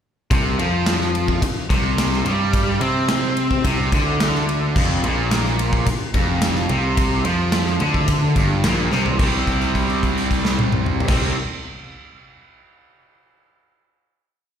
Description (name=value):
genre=classic rock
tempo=108 BPM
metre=4/4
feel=straight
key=unclear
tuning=A4 = 440 Hz
part: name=cranked stack guitar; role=riff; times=0.3-11.4 s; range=F2 to C4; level=-24 LUFS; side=left 11 dB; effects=overdrive, slapback echo
part: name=distorted electric guitar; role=riff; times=0.3-11.4 s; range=F2 to C4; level=-24 LUFS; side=right 12 dB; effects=overdrive, slapback echo
part: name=fuzz picked electric bass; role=bass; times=0.3-11.3 s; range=F1 to C3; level=-22 LUFS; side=equal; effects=overdrive
part: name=gated 80s drum kit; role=drums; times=0.3-11.2 s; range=crash cymbal, kick drum, ride cymbal, snare drum, toms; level=-22 LUFS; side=equal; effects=none
room=light reverb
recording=live gig heard through the venue's PA, recital hall reverb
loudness=-17 LUFS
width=side -8 dB against mid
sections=0.3-9.2 riff; 9.2-11.4 final chord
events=drum fill 8.9; held note 9.2-11.1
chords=0.3 C5; 4.8 F5; 9.2 C5